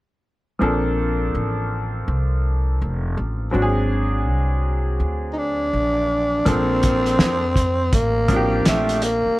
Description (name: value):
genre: hip hop, jazz-hop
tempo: 82 BPM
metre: 4/4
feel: swing 64% on 16ths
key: Bb major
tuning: A4 = 435 Hz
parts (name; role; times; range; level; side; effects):
- bright upright piano; accompaniment; 0.6-9.0 s; F3 to A4; -24 LUFS; equal; none
- upright bass; bass; 0.6-9.3 s; F1 to F2; -22 LUFS; equal; none
- growling tenor saxophone; melody; 5.3-9.4 s; A3 to Eb4; -20 LUFS; equal; none
- cloth-damped thuddy drum kit; drums; 6.5-9.2 s; hi-hat, kick drum, snare drum; -19 LUFS; equal; none
room: light reverb, studio ambience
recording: none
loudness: -18 LUFS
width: side -18 dB against mid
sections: 0.6-6.5 A section; 6.5-9.4 B section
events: none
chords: 0.6 Bbmaj9; 3.5 Ab7#11; 6.5 Bbmaj9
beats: | 0.61 1.35 2.08 2.81 | 3.54 4.27 5.00 5.74 | 6.47 7.20 7.93 8.66